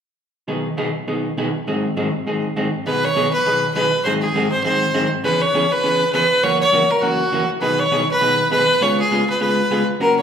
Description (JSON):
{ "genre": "country", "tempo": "202 BPM", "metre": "4/4", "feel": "swing 61% on 8ths", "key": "B major", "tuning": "A4 = 443 Hz", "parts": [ { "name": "vintage hollow-body jazz guitar", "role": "accompaniment", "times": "0.5-10.2 s", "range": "F#2 to G#4", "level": "-20 LUFS", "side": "equal", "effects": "none" }, { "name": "clear fiddle", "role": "melody", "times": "2.9-10.2 s", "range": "F#4 to C#5", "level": "-17 LUFS", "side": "equal", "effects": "none" } ], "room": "wet large studio reverb, RT60 1.2 s", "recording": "band playing live in one room", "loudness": "-16 LUFS", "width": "side -8 dB against mid", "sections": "0.5-2.9 A section; 2.9-10.2 B section", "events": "none", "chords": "0.5 B6; 1.7 G#7; 2.9 B6; 4.0 G#7; 5.2 C#m7; 6.4 F#7; 7.6 B6; 8.8 C#7" }